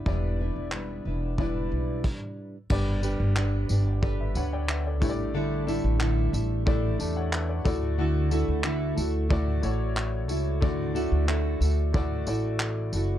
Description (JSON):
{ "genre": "acoustic pop", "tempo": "91 BPM", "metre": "4/4", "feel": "straight", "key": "D major", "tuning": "A4 = 440 Hz", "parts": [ { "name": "clear upright piano", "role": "accompaniment", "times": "0.0-13.2 s", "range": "A3 to A5", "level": "-35 LUFS", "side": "left 6 dB", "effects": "none" }, { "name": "fingerpicked plugged-in steel-string acoustic guitar", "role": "accompaniment", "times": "0.0-13.2 s", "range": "A2 to B4", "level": "-30 LUFS", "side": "right 1 dB", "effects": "double-tracked left and right" }, { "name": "upright bass", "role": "bass", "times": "0.0-13.2 s", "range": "E1 to E2", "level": "-27 LUFS", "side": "equal", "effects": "none" }, { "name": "vintage brush drum kit", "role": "drums", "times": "0.1-13.1 s", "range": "crash cymbal, handclaps, kick drum, tambourine", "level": "-30 LUFS", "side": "equal", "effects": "none" } ], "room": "little or no reverb", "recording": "dark, warm production", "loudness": "-24 LUFS", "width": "side -12 dB against mid", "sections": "0.0-2.7 A section; 2.7-13.2 B section", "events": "stop 2.0-2.7", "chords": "0.0 Em7; 2.7 G; 5.0 A7sus4; 7.7 Dadd9", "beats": "| 0.06 0.72 1.39 2.05 | 2.71 3.37 4.03 4.69 | 5.35 6.01 6.67 7.33 | 7.99 8.65 9.31 9.97 | 10.63 11.29 11.95 12.61" }